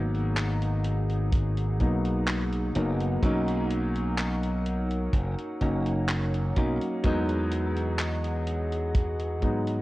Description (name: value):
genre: vaporwave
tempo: 63 BPM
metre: 4/4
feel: straight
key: unclear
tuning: A4 = 438 Hz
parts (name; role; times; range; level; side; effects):
- warm electric grand piano; accompaniment; 0.0-9.8 s; F#3 to D#4; -30 LUFS; equal; wide subtle chorus, analog delay
- warbly tape-like pad; sustained chords; 0.0-9.8 s; E3 to F#5; -36 LUFS; left 1 dB; chorus, built-in reverb
- glassy slap bass; bass; 0.0-9.8 s; F#1 to G#2; -28 LUFS; equal; tube saturation
- gated 80s digital drum machine; drums; 0.1-9.8 s; handclaps, hi-hat; -35 LUFS; equal; gated reverb, vintage 12-bit sampler grit
- kick drum; drums; 1.3-9.6 s; none; -26 LUFS; equal; vintage 12-bit sampler grit
room: light reverb, small room ambience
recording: worn, warbling old tape, cassette tape, warbly pitch drift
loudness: -25 LUFS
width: side -18 dB against mid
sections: 0.0-9.8 A section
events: none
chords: 0.0 G#m7; 3.2 Bmaj7; 7.0 Emaj9